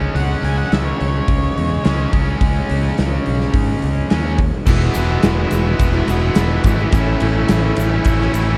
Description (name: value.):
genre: classic rock.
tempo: 106 BPM.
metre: 4/4.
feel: straight.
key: E major.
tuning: A4 = 438 Hz.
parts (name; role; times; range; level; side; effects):
distorted electric guitar; riff; 0.0-8.6 s; A2 to E4; -24 LUFS; equal; overdrive.
fingered electric bass; bass; 0.0-8.6 s; E1 to G#2; -21 LUFS; equal; none.
octave-fuzz lead guitar; second line; 0.2-2.1 s; C#5 to G#5; -29 LUFS; equal; distortion, slapback echo.
huge arena drum kit; drums; 0.2-8.5 s; crash cymbal, hi-hat, kick drum, ride cymbal, snare drum; -21 LUFS; equal; vintage 12-bit sampler grit.
picked steel-string acoustic guitar; accompaniment; 4.7-8.6 s; E2 to F#4; -24 LUFS; equal; none.
bright tonewheel organ; sustained chords; 4.7-8.6 s; E4 to E5; -31 LUFS; equal; none.
egg shaker; percussion; 4.7-8.5 s; none; -42 LUFS; equal; none.
room: moderate lush hall reverb, RT60 1.8 s, small room ambience.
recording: big arena sound.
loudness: -17 LUFS.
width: mono.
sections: 0.0-4.7 A section; 4.7-8.6 B section.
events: none.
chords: 0.0 C#5; 4.7 Eadd9; 6.9 A.